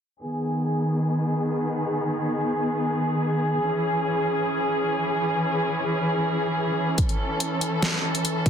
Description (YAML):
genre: heavy wobble dubstep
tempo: free time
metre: none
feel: none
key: G# phrygian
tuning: A4 = 440 Hz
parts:
  - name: muted chamber string section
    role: sustained chords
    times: 0.2-8.5 s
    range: D#3 to A4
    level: -23 LUFS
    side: equal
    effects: sidechain pumping, low-pass filter
  - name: dubstep drum kit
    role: drums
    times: 7.0-8.5 s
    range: hi-hat, snare drum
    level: -26 LUFS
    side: equal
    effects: low-pass filter on hats, low-pass filter on snare, low-pass filter on room
  - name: electronic kick drum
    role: drums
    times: 7.0-8.5 s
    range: none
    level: -22 LUFS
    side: equal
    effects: none
room: moderate plate reverb, RT60 1.6 s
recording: dense, heavily limited modern master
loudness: -22 LUFS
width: side -8 dB against mid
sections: 0.2-8.5 A section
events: filter sweep on string section 0.2-8.5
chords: 0.2 G#m; 3.6 C#m; 7.0 A